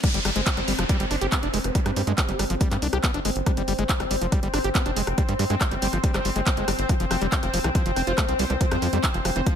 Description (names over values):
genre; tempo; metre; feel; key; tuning
psychedelic trance; 140 BPM; 4/4; straight; unclear; A4 = 440 Hz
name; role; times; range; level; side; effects
pulsing gated texture; sustained chords; 0.4-9.6 s; C4 to C5; -28 LUFS; left 1 dB; chorus, built-in reverb, sidechain pumping
overdriven acid bass; riff; 0.0-9.5 s; E3 to G4; -29 LUFS; moving between left 7 dB and right 8 dB; distortion, auto-pan, sidechain pumping, tape echo
electronic kick drum; drums; 0.0-9.6 s; none; -24 LUFS; equal; none
techno drum kit; drums; 0.0-9.6 s; crash cymbal, handclaps, hi-hat, rim click; -28 LUFS; equal; none
downlifter; sound effects; 0.0-3.5 s; none; -32 LUFS; equal; none
tight sequencer bass; bass; 0.1-9.4 s; F1 to G2; -27 LUFS; equal; tube saturation
vowel-sweep wobble bass; second line; 1.5-2.4, 8.4-8.8 s; G3 to B3; -39 LUFS; right 2 dB; none
room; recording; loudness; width
light reverb; none; -21 LUFS; side -8 dB against mid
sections
0.0-9.6 A section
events
drop 0.0-9.6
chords
0.0 G5; 6.9 F5